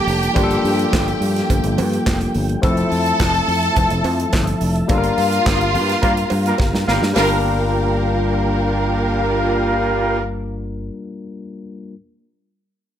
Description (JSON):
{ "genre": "disco", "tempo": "106 BPM", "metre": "4/4", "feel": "straight", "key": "G dorian", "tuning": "A4 = 440 Hz", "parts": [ { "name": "clear studio string section", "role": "second line", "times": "0.0-10.2 s", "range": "D4 to A5", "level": "-22 LUFS", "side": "equal", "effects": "none" }, { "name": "barky tine electric piano", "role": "accompaniment", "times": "0.0-12.0 s", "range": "F3 to Bb4", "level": "-23 LUFS", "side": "left 4 dB", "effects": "overdrive" }, { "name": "mellow tonewheel organ", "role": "sustained chords", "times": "0.0-10.2 s", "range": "F3 to Bb5", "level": "-25 LUFS", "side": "right 1 dB", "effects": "chorus vibrato, wide subtle chorus" }, { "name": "fingered electric bass", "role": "bass", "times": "0.1-10.9 s", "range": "F1 to G2", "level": "-22 LUFS", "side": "equal", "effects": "none" }, { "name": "modern studio drum kit", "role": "drums", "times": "0.1-7.3 s", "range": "handclaps, hi-hat, kick drum, snare drum", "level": "-22 LUFS", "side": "equal", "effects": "none" }, { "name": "cowbell", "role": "percussion", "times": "0.4-7.4 s", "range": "none", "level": "-31 LUFS", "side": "right 8 dB", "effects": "none" }, { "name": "dark horn section", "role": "stabs", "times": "6.0-10.2 s", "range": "G3 to Bb4", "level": "-21 LUFS", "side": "right 1 dB", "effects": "none" } ], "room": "light reverb, small room ambience", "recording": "none", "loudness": "-15 LUFS", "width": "side -10 dB against mid", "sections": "0.0-7.2 A section; 7.2-9.4 B section", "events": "band accent 4.9-7.2; drum fill 6.6-7.2", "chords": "0.0 Gm9; 2.6 Fmaj7; 4.9 Gm7", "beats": "| 0.36 0.93 1.50 2.06 | 2.63 3.20 3.77 4.33 | 4.90 5.47 6.03 6.60 | 7.17 7.74 8.30 8.87" }